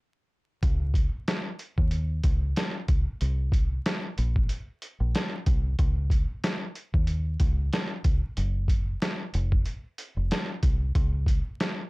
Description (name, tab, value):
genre	hip hop, boom-bap hip-hop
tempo	93 BPM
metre	4/4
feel	swing 54% on 16ths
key	Db major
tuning	A4 = 440 Hz
part	deep dub fingered electric bass	bass	0.6-11.4 s	F1 to Eb2	-26 LUFS	equal	none
part	trip hop sampler-style drum kit	drums	0.6-11.8 s	hi-hat, kick drum, snare drum	-26 LUFS	equal	none
room	little or no reverb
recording	dark, warm production, vinyl crackle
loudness	-24 LUFS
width	side -24 dB against mid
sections	0.6-11.9 A section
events	break 0.0-0.6; stop 0.0-0.6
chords	none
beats	| 0.63 1.27 1.92 2.56 | 3.21 3.85 4.50 5.14 | 5.79 6.43 7.08 7.72 | 8.37 9.01 9.66 10.30 | 10.95 11.60